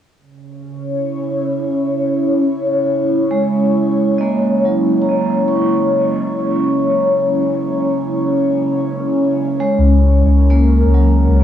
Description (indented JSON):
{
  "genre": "ambient",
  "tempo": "100 BPM",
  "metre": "4/4",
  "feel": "swing 57% on 16ths",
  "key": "C# dorian",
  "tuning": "A4 = 440 Hz",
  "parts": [
    { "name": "airy breathy pad", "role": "sustained chords", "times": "0.6-11.4 s", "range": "C#3 to C#5", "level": "-16 LUFS", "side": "left 1 dB", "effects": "chorus, phaser, cassette tape" },
    { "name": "vibraphone with medium mallets", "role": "arpeggios", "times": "3.3-11.4 s", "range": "F#3 to C#6", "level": "-19 LUFS", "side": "right 4 dB", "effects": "vintage 12-bit sampler grit, low-pass filter, cassette tape, analog delay" },
    { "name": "soft dub sub bass", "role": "bass", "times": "9.8-11.4 s", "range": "C#2", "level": "-10 LUFS", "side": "left 1 dB", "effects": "none" }
  ],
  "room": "light reverb, studio reverb",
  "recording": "home recording on cassette",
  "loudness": "-13 LUFS",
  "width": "side -10 dB against mid",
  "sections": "0.2-11.4 A section",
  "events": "none",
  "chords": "0.2 C#m; 9.8 D#m7/C# (rootless)"
}